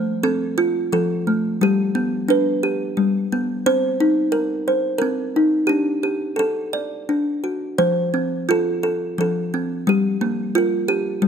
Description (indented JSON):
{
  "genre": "children's music, lullaby",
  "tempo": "88 BPM",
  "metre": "3/4",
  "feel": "rubato",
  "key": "G minor",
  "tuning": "A4 = 440 Hz",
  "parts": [
    { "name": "kalimba", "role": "solo", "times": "0.0-11.3 s", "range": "F3 to D5", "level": "-18 LUFS", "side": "equal", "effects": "none" }
  ],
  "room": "light reverb",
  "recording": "close, detailed microphones",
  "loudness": "-18 LUFS",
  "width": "side -7 dB against mid",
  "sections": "0.0-11.3 A section",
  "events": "none",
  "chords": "0.0 F; 1.6 G; 3.7 Cm7; 5.7 G5/D; 6.4 D; 7.8 F; 9.9 Gm7",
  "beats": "0.24 0.94 | 1.62 2.30 2.98 | 3.66 4.34 5.02 | 5.71 6.39 7.09 | 7.80 8.49 9.18 | 9.87 10.55 11.23"
}